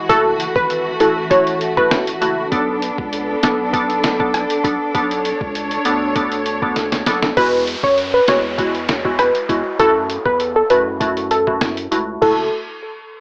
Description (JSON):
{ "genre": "dancehall", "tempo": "99 BPM", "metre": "4/4", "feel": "straight", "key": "F# minor", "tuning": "A4 = 440 Hz", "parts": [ { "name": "glassy wavetable pluck", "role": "accompaniment", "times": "0.0-12.5 s", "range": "G#3 to A4", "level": "-23 LUFS", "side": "equal", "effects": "chorus, low-pass filter" }, { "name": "warm studio string section", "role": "sustained chords", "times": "0.0-7.3 s", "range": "E3 to C#5", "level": "-24 LUFS", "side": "equal", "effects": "sidechain pumping" }, { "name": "glassy wavetable pluck", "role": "melody", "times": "0.1-1.9, 7.4-12.5 s", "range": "A4 to C#5", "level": "-19 LUFS", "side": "equal", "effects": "chorus, low-pass filter, analog delay" }, { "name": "saturated sub bass", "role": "bass", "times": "0.1-12.5 s", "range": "F#1 to F#2", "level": "-33 LUFS", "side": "equal", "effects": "none" }, { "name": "lo-fi sampler-style drum kit", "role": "drums", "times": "0.1-12.4 s", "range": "crash cymbal, hi-hat, kick drum, rim click, snare drum", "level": "-25 LUFS", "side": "equal", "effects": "cassette tape" }, { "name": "downlifter", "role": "sound effects", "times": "7.4-12.2 s", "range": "none", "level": "-31 LUFS", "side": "equal", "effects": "none" } ], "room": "light reverb", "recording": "home recording on cassette, small speaker sound", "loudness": "-17 LUFS", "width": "mono", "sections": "0.0-7.4 A section; 7.4-12.2 B section", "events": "drum fill 6.8-7.4; filter sweep 7.4-12.2", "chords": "0.1 F#m7; 2.5 Bm7; 7.4 Eadd9; 9.8 F#m7" }